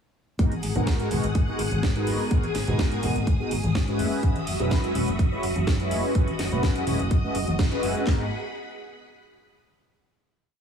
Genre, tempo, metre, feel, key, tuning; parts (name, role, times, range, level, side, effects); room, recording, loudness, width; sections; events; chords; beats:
filtered disco house; 125 BPM; 4/4; straight; G# minor; A4 = 440 Hz
mellow synth brass; accompaniment; 0.4-8.3 s; G#3 to B4; -29 LUFS; equal; chorus, phaser, sidechain pumping
phased string machine; sustained chords; 0.4-8.3 s; F#4 to D#6; -33 LUFS; left 1 dB; ensemble chorus, phaser, sidechain pumping
fingered electric bass; bass; 0.4-8.3 s; F#1 to G#2; -28 LUFS; left 1 dB; sidechain pumping
house drum kit; drums; 0.4-8.2 s; handclaps, kick drum, snare drum; -23 LUFS; equal
house drum kit; drums; 0.4-8.0 s; hi-hat, snare drum; -33 LUFS; right 1 dB; sidechain pumping on hats
egg shaker and congas; percussion; 0.4-8.0 s; -33 LUFS; right 3 dB; sidechain pumping on perc
light reverb, digital ambience; heavily compressed radio sound, multiband compression, small room ambience; -22 LUFS; side -7 dB against mid
0.4-8.1 drop; 8.1-10.0 final chord
drop 0.4-8.1; band accent 7.6
0.4 G#m7; 4.0 F#7sus4; 8.1 G#m7
| 0.39 0.87 1.35 1.83 | 2.31 2.79 3.27 3.75 | 4.23 4.71 5.19 5.67 | 6.15 6.63 7.11 7.59 | 8.07